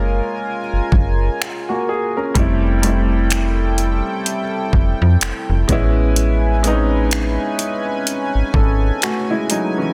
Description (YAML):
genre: contemporary R&B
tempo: 63 BPM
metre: 4/4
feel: swing 58% on 16ths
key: unclear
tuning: A4 = 440 Hz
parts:
  - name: warm concert grand piano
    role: accompaniment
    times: 0.0-9.9 s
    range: E3 to A#4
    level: -23 LUFS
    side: equal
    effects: none
  - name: chorused pulse-width pad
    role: sustained chords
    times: 0.0-9.9 s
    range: C#4 to G#5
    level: -28 LUFS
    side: equal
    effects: none
  - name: slap-like FM bass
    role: bass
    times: 0.0-8.9 s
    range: F1 to F2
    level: -19 LUFS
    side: equal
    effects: none
  - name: smooth R&B drum kit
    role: drums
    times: 0.9-9.8 s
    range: finger snaps, hi-hat, kick drum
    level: -21 LUFS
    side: equal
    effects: soft clipping on snare
room: digital ambience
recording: dense, heavily limited modern master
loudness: -18 LUFS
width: mono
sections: 0.0-9.9 A section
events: none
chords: 0.0 F#maj9; 2.4 Fmaj9; 5.7 Amaj9